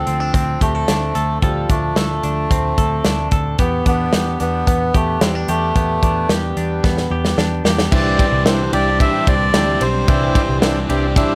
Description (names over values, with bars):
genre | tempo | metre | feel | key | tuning
jangly indie pop | 111 BPM | 4/4 | straight | C major | A4 = 440 Hz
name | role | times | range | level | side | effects
melodica | melody | 0.0-10.6 s | G3 to E5 | -24 LUFS | equal | none
direct-recorded clean electric guitar | arpeggios | 0.0-11.3 s | E3 to A4 | -26 LUFS | equal | subtle chorus
vintage muted picked electric bass | bass | 0.0-11.2 s | B1 to E2 | -24 LUFS | equal | none
modern studio drum kit | drums | 0.1-11.3 s | crash cymbal, hi-hat, kick drum, ride cymbal, snare drum | -21 LUFS | equal | none
combo organ | accompaniment | 7.9-11.3 s | D4 to E5 | -25 LUFS | equal | plate reverb
crunchy overdriven guitar | accompaniment | 7.9-11.3 s | C3 to G4 | -26 LUFS | equal | plate reverb
room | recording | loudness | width
light reverb | none | -17 LUFS | mono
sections
0.0-7.9 A section; 7.9-11.3 B section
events
drum fill 6.8-7.9; transistor combo organ fill 10.6-11.3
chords
0.0 Dm7; 3.6 Em7; 7.9 Cadd9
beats
0.34 0.88 | 1.42 1.97 2.51 3.05 | 3.59 4.13 4.67 5.22 | 5.76 6.30 6.84 7.38 | 7.92 8.46 9.00 9.54 | 10.08 10.62 11.16